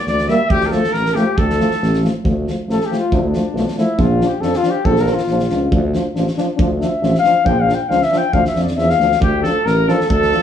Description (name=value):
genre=balkan folk, Balkan brass band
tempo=138 BPM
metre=2/4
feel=straight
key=D minor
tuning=A4 = 440 Hz
part: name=mellow trumpet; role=melody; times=0.0-2.0, 9.2-10.4 s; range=G4 to E5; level=-19 LUFS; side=equal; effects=none
part: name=mellow flugelhorn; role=second line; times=0.0-10.4 s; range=D4 to G5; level=-18 LUFS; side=left 4 dB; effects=slapback echo
part: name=warm tuba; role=bass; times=0.1-10.3 s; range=A1 to F2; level=-19 LUFS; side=equal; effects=none
part: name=loose indie drum kit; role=percussion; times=0.1-10.4 s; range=kick drum, snare drum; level=-22 LUFS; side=equal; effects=none
part: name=clear euphonium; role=accompaniment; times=0.3-10.4 s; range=F3 to G3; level=-23 LUFS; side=right 3 dB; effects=none
part: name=mellow French horn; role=accompaniment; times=0.3-10.4 s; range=A3 to D4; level=-23 LUFS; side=left 3 dB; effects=none
room=wet studio reverb, RT60 0.7 s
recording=heard from further back in the room, small room ambience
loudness=-14 LUFS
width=side -9 dB against mid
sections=0.0-2.2 A section; 2.2-9.2 B section; 9.2-10.4 C section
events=flugelhorn solo 2.2-9.2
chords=0.5 Dm; 4.0 Bb; 5.7 Dm; 7.5 Bb; 8.3 Dm